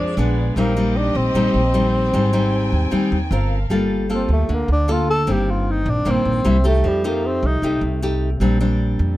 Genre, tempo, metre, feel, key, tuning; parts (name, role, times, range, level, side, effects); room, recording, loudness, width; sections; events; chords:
bossa nova; 153 BPM; 4/4; straight; G minor; A4 = 440 Hz
breathy tenor saxophone; melody; 0.0-7.8 s; G3 to A4; -22 LUFS; left 1 dB
nylon-string guitar; accompaniment; 0.0-9.2 s; F2 to Bb4; -21 LUFS; left 1 dB
muted symphonic violin section; sustained chords; 0.0-3.7 s; Cb4 to Ab5; -30 LUFS; right 1 dB
upright bass; bass; 0.0-9.2 s; G1 to F2; -20 LUFS; equal
little or no reverb; close, detailed microphones; -16 LUFS; side -16 dB against mid
0.0-3.7 A section; 3.7-9.2 B section
tenor saxophone solo 3.7-9.2
0.2 Bb7b9; 0.6 Eb6/Bb; 2.1 Abmaj7; 3.3 Gm11; 3.7 Gm9; 5.3 Eb6/G; 6.5 C7; 6.8 F9; 8.4 Bb69